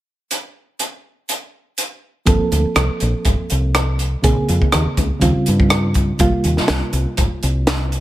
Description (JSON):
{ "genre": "electric jazz fusion", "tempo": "122 BPM", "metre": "4/4", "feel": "swing 54% on 16ths", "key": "unclear", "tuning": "A4 = 442 Hz", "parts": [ { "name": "crisp fusion drum kit", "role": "drums", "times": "0.3-8.0 s", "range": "hi-hat, kick drum, rim click, snare drum", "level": "-18 LUFS", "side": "equal", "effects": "none" }, { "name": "reed electric piano", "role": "accompaniment", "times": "2.3-8.0 s", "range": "C3 to A4", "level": "-21 LUFS", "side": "right 2 dB", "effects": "overdrive, medium tremolo" }, { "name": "woody fretless electric bass", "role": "bass", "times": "2.3-8.0 s", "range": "G1 to G2", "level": "-18 LUFS", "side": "equal", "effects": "none" } ], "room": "little or no reverb", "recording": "none", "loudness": "-16 LUFS", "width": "side -14 dB against mid", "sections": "0.3-2.3 A section; 2.3-8.0 B section", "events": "none", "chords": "0.3 N.C.; 2.3 Gm11; 4.2 Bbm9; 5.2 Eb13; 6.2 Abmaj13" }